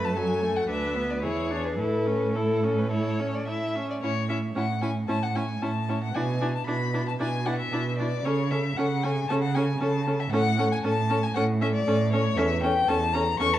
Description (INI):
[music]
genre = quick classical-period movement for string quartet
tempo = 106-119 BPM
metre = 4/4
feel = rubato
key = A major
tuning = A4 = 440 Hz
[part]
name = rich violin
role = melody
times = 0.0-13.6 s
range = A4 to C#6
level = -29 LUFS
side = left 5 dB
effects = none
[part]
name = rich violin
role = second line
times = 0.0-13.5 s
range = E4 to E5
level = -30 LUFS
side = left 2 dB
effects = none
[part]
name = clear viola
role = accompaniment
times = 0.0-13.5 s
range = F#3 to E4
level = -31 LUFS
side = right 2 dB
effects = none
[part]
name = rich cello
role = bass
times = 0.0-13.6 s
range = D2 to C#3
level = -28 LUFS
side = right 3 dB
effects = none
[sound]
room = moderate recital hall reverb, RT60 1.4 s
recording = worn, warbling old tape, cassette tape, warbly pitch drift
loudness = -24 LUFS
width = side -12 dB against mid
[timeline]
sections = 0.0-4.0 A section; 4.0-13.6 B section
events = none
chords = 0.0 F#m; 0.7 Bm/D; 1.2 E7; 1.8 A; 6.2 E5/B; 8.3 A/C#; 10.3 A; 12.4 A/E